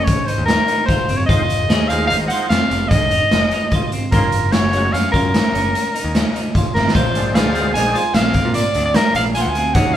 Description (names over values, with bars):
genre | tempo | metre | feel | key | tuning
progressive instrumental, band music in an uneven meter | 149 BPM | 7/4 | straight | unclear | A4 = 440 Hz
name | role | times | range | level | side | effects
warm soprano saxophone | melody | 0.0-10.0 s | Bb4 to Ab5 | -19 LUFS | equal | none
semi-hollow electric guitar | arpeggios | 0.0-10.0 s | C4 to Ab4 | -25 LUFS | equal | none
modern bright picked electric bass | bass | 0.0-10.0 s | F1 to Bb2 | -23 LUFS | equal | none
raw garage drum kit | drums | 0.1-9.8 s | hi-hat, kick drum, snare drum | -18 LUFS | equal | none
overdriven tonewheel organ | accompaniment | 1.3-10.0 s | Gb3 to Ab4 | -25 LUFS | equal | chorus vibrato, slow rotary speaker
room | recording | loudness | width
moderate large studio reverb, RT60 1.4 s | band playing live in one room | -14 LUFS | side -11 dB against mid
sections
0.0-6.9 A section; 6.9-10.0 B section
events
drum fill 6.7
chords
0.0 Gbmaj7; 1.3 Fm7; 4.1 Gbmaj7; 6.9 Bb9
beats
0.07 0.48 0.89 | 1.29 1.70 2.10 2.51 2.91 3.32 3.72 | 4.12 4.53 4.93 5.34 5.74 6.14 6.54 | 6.95 7.35 7.75 8.15 8.55 8.95 9.35 | 9.75